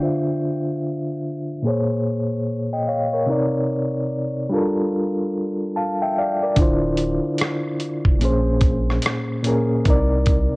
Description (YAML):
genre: lo-fi hip hop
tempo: 73 BPM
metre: 4/4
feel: swing 61% on 16ths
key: unclear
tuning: A4 = 440 Hz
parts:
  - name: reed electric piano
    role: accompaniment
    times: 0.0-10.6 s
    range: Bb2 to A5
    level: -20 LUFS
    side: equal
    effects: fast tremolo, low-pass filter, cassette tape
  - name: saturated sub bass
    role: bass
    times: 6.6-10.5 s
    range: D1 to C2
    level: -22 LUFS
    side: equal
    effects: tube saturation
  - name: dusty soul sampler-style drum kit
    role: drums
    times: 6.6-10.5 s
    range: hi-hat, kick drum, rim click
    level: -20 LUFS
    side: equal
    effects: cassette tape
room: light reverb, digital ambience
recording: home recording on cassette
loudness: -19 LUFS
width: side -24 dB against mid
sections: 0.0-10.6 A section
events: filter sweep on reed electric piano 0.0-10.6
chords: 0.0 Dm9; 1.6 Bbm9; 3.3 Cm9; 4.5 Gm9; 6.6 Dm9; 8.2 Bbm9; 9.9 Cm9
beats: 0.82 1.64 2.46 | 3.28 4.10 4.93 5.75 | 6.57 7.39 8.21 9.04 | 9.86